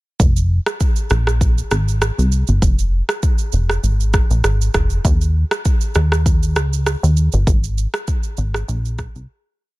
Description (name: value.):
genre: afrobeats.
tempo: 99 BPM.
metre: 4/4.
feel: swing 55% on 16ths.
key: unclear.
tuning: A4 = 440 Hz.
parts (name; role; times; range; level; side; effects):
plucky analog bass; bass; 0.2-9.3 s; F1 to Eb2; -16 LUFS; equal; none.
afro-pop drum kit; drums; 0.2-9.3 s; kick drum, rim click, shaker; -18 LUFS; equal; vintage 12-bit sampler grit, soft clipping on snare.
room: little or no reverb.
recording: dense, heavily limited modern master.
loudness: -15 LUFS.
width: side -20 dB against mid.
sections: 0.2-9.8 verse.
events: fade-out 7.5-9.8; break 9.3-9.8.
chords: none.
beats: | 0.20 0.80 1.41 2.02 | 2.62 3.23 3.83 4.44 | 5.05 5.65 6.26 6.87 | 7.47 8.08 8.68.